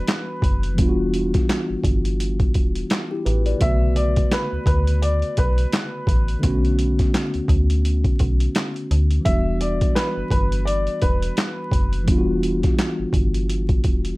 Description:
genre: hip hop, boom-bap hip-hop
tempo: 85 BPM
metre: 4/4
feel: swing 58% on 16ths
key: E minor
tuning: A4 = 440 Hz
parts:
  - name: warm upright piano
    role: melody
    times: 0.0-12.0 s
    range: B4 to E5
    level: -26 LUFS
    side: equal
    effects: high-pass filter, low-pass filter, plate reverb, digital delay
  - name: mellow tine electric piano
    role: accompaniment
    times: 0.0-14.2 s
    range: C#3 to D5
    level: -25 LUFS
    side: equal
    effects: medium stereo tremolo, cassette tape, high-pass filter, low-pass filter, plate reverb
  - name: boom bap sampler-style drum kit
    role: drums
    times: 0.1-14.2 s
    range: handclaps, hi-hat, kick drum, snare drum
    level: -21 LUFS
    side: equal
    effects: none
  - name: metallic FM bass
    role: bass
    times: 0.4-14.1 s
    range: E1 to D2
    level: -21 LUFS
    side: equal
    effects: none
room: light reverb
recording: vinyl crackle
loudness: -18 LUFS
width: side -21 dB against mid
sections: 0.0-14.2 A section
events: none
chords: 0.0 Em9; 3.6 Bm9; 9.3 Em9

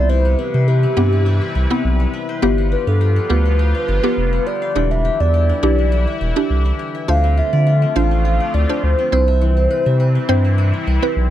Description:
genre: pop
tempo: 103 BPM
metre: 4/4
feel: straight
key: C major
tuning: A4 = 435 Hz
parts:
  - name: hollow clarinet-like synth lead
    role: melody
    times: 0.0-10.8 s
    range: G4 to F5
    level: -21 LUFS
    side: equal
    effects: chorus, slapback echo
  - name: mallet-like synth pluck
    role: accompaniment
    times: 0.0-11.3 s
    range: B3 to C5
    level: -21 LUFS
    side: right 1 dB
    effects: chorus, phaser
  - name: sweeping resonant pad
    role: sustained chords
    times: 0.0-11.3 s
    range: C3 to B4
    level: -26 LUFS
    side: equal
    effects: chorus
  - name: qanun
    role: arpeggios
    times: 0.0-11.3 s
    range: C3 to F5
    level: -27 LUFS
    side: left 8 dB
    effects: slapback echo
  - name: saturated sub bass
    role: bass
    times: 0.0-11.3 s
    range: E1 to D3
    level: -16 LUFS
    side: equal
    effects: none
room: little or no reverb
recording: dry, close 1970s-style studio recording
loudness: -14 LUFS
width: side -12 dB against mid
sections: 0.0-11.3 A section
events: none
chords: 0.0 Cmaj7; 2.4 G7; 4.8 Em7; 7.1 Dm7; 9.1 Cmaj7

